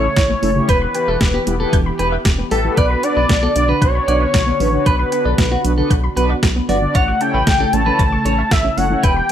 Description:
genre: synth-pop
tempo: 115 BPM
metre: 4/4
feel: straight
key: B minor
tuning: A4 = 440 Hz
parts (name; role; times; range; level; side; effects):
- fat analog lead; melody; 0.0-9.3 s; A4 to A5; -19 LUFS; left 1 dB; chorus, plate reverb, ping-pong delay
- mellow synth brass; accompaniment; 0.0-9.3 s; A3 to D5; -22 LUFS; equal; chorus
- brassy analog pad; sustained chords; 0.0-9.3 s; C#3 to G4; -25 LUFS; equal; chorus, phaser
- soft round pluck; arpeggios; 0.0-9.3 s; C#3 to A6; -26 LUFS; right 1 dB; chorus, ping-pong delay
- round analog bass; bass; 0.0-9.2 s; E1 to B1; -20 LUFS; equal; none
- detuned 8-bit digital drum machine; drums; 0.2-9.3 s; hi-hat, kick drum, snare drum; -17 LUFS; equal; overdrive
- clean electric guitar; second line; 0.7-9.1 s; F#4 to D5; -24 LUFS; right 1 dB; ping-pong delay
room: moderate studio reverb, RT60 0.6 s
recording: none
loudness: -13 LUFS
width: side -10 dB against mid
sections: 0.0-9.3 A section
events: none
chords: 0.0 A; 0.7 Em; 2.8 Bm; 6.9 A

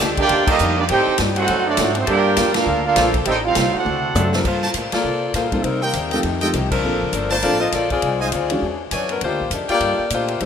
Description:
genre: jazz, big band swing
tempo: 202 BPM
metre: 4/4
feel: swing 60% on 8ths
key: G minor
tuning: A4 = 440 Hz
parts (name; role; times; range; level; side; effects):
- picked swing-style acoustic guitar; accompaniment; 0.0-10.5 s; G2 to C#5; -28 LUFS; left 6 dB; none
- bright saxophone section; sustained chords; 0.0-4.5 s; Eb3 to A4; -30 LUFS; left 1 dB; none
- upright bass; bass; 0.0-10.5 s; F1 to C3; -26 LUFS; equal; none
- swinging big-band drum kit; drums; 0.0-10.5 s; crash cymbal, hi-hat, kick drum, ride cymbal, snare drum, toms; -24 LUFS; equal; none
- bright trumpet section; melody; 0.2-4.4 s; A3 to G5; -21 LUFS; right 3 dB; none
- bright trombone section; second line; 0.2-4.3 s; F#3 to G4; -20 LUFS; right 4 dB; none
- warm saxophone section; melody; 4.4-10.5 s; Eb3 to Eb5; -21 LUFS; left 3 dB; none
- brilliant trumpet section; stabs; 4.6-10.1 s; D4 to A5; -27 LUFS; right 1 dB; none
- dark baby grand piano; accompaniment; 5.5-10.5 s; Eb3 to Bb4; -25 LUFS; right 1 dB; none
room: moderate lush hall reverb, RT60 1.7 s, studio ambience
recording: rough home demo mix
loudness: -16 LUFS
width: side -7 dB against mid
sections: 0.0-4.5 A section; 4.5-10.5 B section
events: band accent 0.4, 2.5, 4.9, 6.7; drum fill 3.9-4.5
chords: 0.0 Ebmaj9#11; 0.9 Am7b5; 1.5 D7b9; 2.1 Gm11; 3.3 Am7b5; 3.9 D7; 4.5 Gm11; 5.6 Cm7; 6.2 F9; 6.8 Bbmaj9; 8.0 Fm7; 8.6 E13; 9.2 Ebmaj9#11

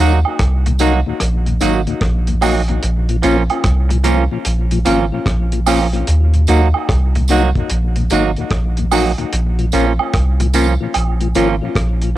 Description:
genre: roots reggae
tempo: 74 BPM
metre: 4/4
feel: swing 65% on 16ths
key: Bb minor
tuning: A4 = 435 Hz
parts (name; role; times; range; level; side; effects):
- mellow tonewheel organ; accompaniment; 0.0-12.1 s; Eb2 to Gb4; -21 LUFS; left 6 dB; slow rotary speaker, cassette tape, tape echo
- semi-hollow electric guitar; accompaniment; 0.0-11.5 s; F3 to Gb4; -19 LUFS; right 6 dB; cassette tape, tape echo
- soft dub sub bass; bass; 0.0-12.2 s; Ab1 to Eb2; -15 LUFS; equal; none
- woodblock and tambourine; percussion; 0.3-11.6 s; none; -23 LUFS; right 8 dB; none
- cloth-damped thuddy drum kit; drums; 0.4-12.2 s; hi-hat, kick drum, rim click; -21 LUFS; equal; cassette tape
room: little or no reverb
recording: home recording on cassette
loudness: -13 LUFS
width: side -14 dB against mid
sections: 0.0-12.2 A section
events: none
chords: 0.0 Ebm; 2.8 Bbm; 6.1 Ebm; 9.3 Bbm

